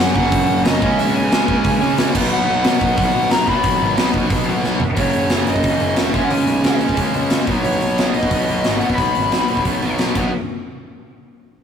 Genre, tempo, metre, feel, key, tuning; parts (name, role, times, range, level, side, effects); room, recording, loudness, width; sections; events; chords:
punk rock; 180 BPM; 4/4; straight; A4 = 440 Hz
lead guitar through a small cranked amp; melody; 0.0-9.9 s; C#5 to B5; -21 LUFS; left 1 dB; overdrive
sludgy distorted guitar; riff; 0.0-4.8 s; F#2 to C#4; -26 LUFS; equal
tight distorted guitar; riff; 0.0-10.3 s; F#2 to C#4; -23 LUFS; left 3 dB; distortion
tight distorted guitar; riff; 0.0-10.3 s; F#2 to C#4; -22 LUFS; right 5 dB; distortion
fuzz picked electric bass; bass; 0.0-10.3 s; E1 to B2; -24 LUFS; right 1 dB; overdrive
big rock drum kit; drums; 0.0-10.2 s; crash cymbal, hi-hat, kick drum, snare drum, toms; -19 LUFS; left 1 dB
light reverb; rough rehearsal-room recording, warm saturation; -15 LUFS; side -8 dB against mid
0.0-5.0 A section; 5.0-10.3 B section; 10.3-11.6 C section
drum fill 4.6-5.0, 10.2
0.0 F#5; 0.8 C#5; 2.1 B5; 5.0 F#5; 6.1 C#5; 7.5 B; 10.2 B5; 10.3 N.C.